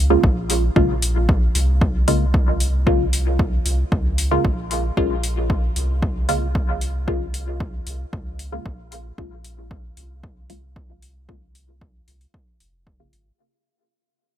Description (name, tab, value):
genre	dub techno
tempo	114 BPM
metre	4/4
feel	straight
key	Bb minor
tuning	A4 = 439 Hz
part	soft dub sub bass	bass	0.0-13.3 s	F1 to Db2	-22 LUFS	equal	sidechain pumping
part	filtered dub chord stab	stabs	0.1-13.3 s	Db3 to F4	-24 LUFS	equal	chorus, phaser, sidechain pumping, dub echo
part	electronic kick drum	drums	0.2-13.0 s	none	-22 LUFS	equal	overdrive
part	electronic hi-hat	drums	0.5-13.2 s	none	-26 LUFS	left 2 dB	overdrive
room	little or no reverb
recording	none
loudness	-18 LUFS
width	side -11 dB against mid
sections	0.0-13.4 A section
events	fade-out 0.0-13.4; filter sweep on synth stab 0.0-13.4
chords	0.0 Bbm7